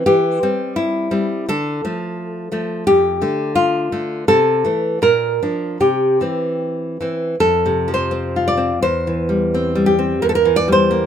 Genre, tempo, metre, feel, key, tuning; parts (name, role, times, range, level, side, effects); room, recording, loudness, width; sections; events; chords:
romantic piece for solo classical guitar; 75-89 BPM; 2/4; rubato; F major; A4 = 442 Hz
nylon-string guitar; solo; 0.0-11.1 s; E2 to D5; -15 LUFS; equal
light reverb; minimal, uncompressed stereo recording; -15 LUFS; side -9 dB against mid
0.0-7.4 A section; 7.4-11.1 B section
0.1 C/E; 1.5 Dm; 2.9 Dm/F; 4.3 Am/C; 5.0 Bb; 5.8 C; 7.4 F5; 8.8 C/E; 10.2 Em7b5